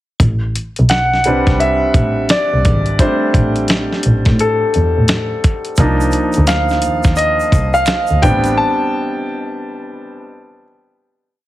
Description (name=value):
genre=R&B, neo-soul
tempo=86 BPM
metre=4/4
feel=swing 62% on 16ths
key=unclear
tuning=A4 = 439 Hz
part: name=dark double bass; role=bass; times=0.2-8.5 s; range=G#1 to A2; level=-16 LUFS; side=equal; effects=none
part: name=dusty soul sampler-style drum kit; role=drums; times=0.2-8.6 s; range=hi-hat, kick drum, snare drum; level=-15 LUFS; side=equal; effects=none
part: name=clear grand piano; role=accompaniment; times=0.9-11.4 s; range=F3 to A5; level=-15 LUFS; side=equal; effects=plate reverb
part: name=egg shaker and finger snaps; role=percussion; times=5.8-8.6 s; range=none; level=-30 LUFS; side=right 5 dB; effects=none
room=light reverb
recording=heavily compressed radio sound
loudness=-12 LUFS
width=side -15 dB against mid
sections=0.2-11.4 A section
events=grand piano solo 0.2-11.4; break 8.6-11.4; fade-out 8.6-11.4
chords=0.2 Am11; 5.8 Cm11; 8.2 Am11